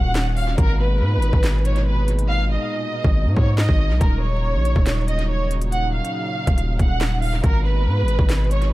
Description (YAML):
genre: hip hop, drill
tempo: 140 BPM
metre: 4/4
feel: half-time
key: unclear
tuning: A4 = 439 Hz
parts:
  - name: rich studio violin section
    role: melody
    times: 0.0-8.7 s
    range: Bb4 to Gb5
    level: -26 LUFS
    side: right 1 dB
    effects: low-pass filter, tape echo
  - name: warm analog pad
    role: sustained chords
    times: 0.0-8.7 s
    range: Bb2 to Gb4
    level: -29 LUFS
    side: right 1 dB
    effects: chorus
  - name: hard-hitting 808-style bass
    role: bass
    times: 0.0-8.7 s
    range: Eb1 to Ab2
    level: -19 LUFS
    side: equal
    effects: none
  - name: drill drum kit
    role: drums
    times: 0.2-8.7 s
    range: handclaps, hi-hat, kick drum, snare drum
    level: -21 LUFS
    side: equal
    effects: none
room: little or no reverb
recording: echo-heavy mix, vinyl crackle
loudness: -17 LUFS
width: side -18 dB against mid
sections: 0.0-8.7 A section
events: hi-hats muted 2.3-4.0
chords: 0.0 Ebm7; 0.6 Abmadd9; 4.0 Ebm7; 7.4 Abmadd9